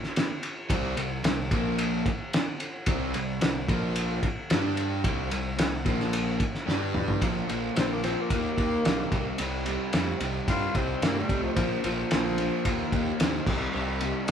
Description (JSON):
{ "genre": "classic rock", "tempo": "110 BPM", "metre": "4/4", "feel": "straight", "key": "C minor", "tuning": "A4 = 440 Hz", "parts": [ { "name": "cloth-damped thuddy drum kit", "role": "drums", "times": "0.0-14.3 s", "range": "crash cymbal, kick drum, ride cymbal, snare drum, toms", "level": "-28 LUFS", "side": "equal", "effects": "none" }, { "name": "crunchy overdriven guitar", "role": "riff", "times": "0.7-14.3 s", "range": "Bb2 to G4", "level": "-33 LUFS", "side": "left 5 dB", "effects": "none" }, { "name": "raw garage guitar", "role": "riff", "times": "0.7-14.3 s", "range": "Bb2 to G4", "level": "-34 LUFS", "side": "right 5 dB", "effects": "overdrive" }, { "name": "fuzz picked electric bass", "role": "bass", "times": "0.7-14.1 s", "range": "Bb1 to G2", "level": "-33 LUFS", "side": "right 1 dB", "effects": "overdrive" }, { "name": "picked swing-style acoustic guitar", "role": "accompaniment", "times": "7.2-14.3 s", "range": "Bb2 to Bb4", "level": "-39 LUFS", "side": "right 5 dB", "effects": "none" }, { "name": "raspy tenor saxophone", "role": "melody", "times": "7.8-13.4 s", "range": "F3 to F4", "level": "-32 LUFS", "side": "left 2 dB", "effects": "none" } ], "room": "moderate large studio reverb, RT60 1.2 s", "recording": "band playing live in one room", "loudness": "-25 LUFS", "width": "side -8 dB against mid", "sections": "0.0-7.2 A section; 7.2-14.3 B section", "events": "drum fill 6.7-7.2; tenor saxophone solo 7.2-14.3", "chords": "0.0 N.C.; 0.7 C5; 1.5 Bb5; 2.9 C5; 3.7 Bb5; 4.5 G5; 5.0 C5; 5.9 Bb5; 6.7 G5; 7.2 Bb; 8.3 Eb; 9.1 Cm; 11.6 Bb; 12.7 Eb; 13.5 Cm" }